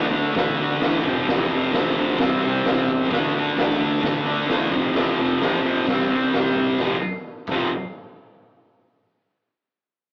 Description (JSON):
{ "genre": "garage rock duo or trio", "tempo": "130 BPM", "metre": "4/4", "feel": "straight", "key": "F major", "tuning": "A4 = 439 Hz", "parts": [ { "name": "thick fuzz guitar", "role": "riff", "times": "0.0-7.7 s", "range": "F2 to D4", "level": "-23 LUFS", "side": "equal", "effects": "distortion" }, { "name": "fuzz fingered electric bass", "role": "bass", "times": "0.0-7.7 s", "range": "F1 to E2", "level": "-32 LUFS", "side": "equal", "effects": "overdrive" }, { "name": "oversized low-tuned drum kit", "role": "drums", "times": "0.4-7.6 s", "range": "crash cymbal, hi-hat, kick drum, snare drum", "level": "-28 LUFS", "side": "equal", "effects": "none" } ], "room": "moderate small room reverb, RT60 0.5 s", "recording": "rough rehearsal-room recording, tube saturation, cassette tape, AM radio sound", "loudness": "-21 LUFS", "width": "mono", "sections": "0.0-6.8 A section; 6.8-8.6 B section", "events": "none", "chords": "0.0 D5; 1.0 F5; 2.2 C; 3.1 D5; 4.7 F5; 5.9 C5; 6.8 F5" }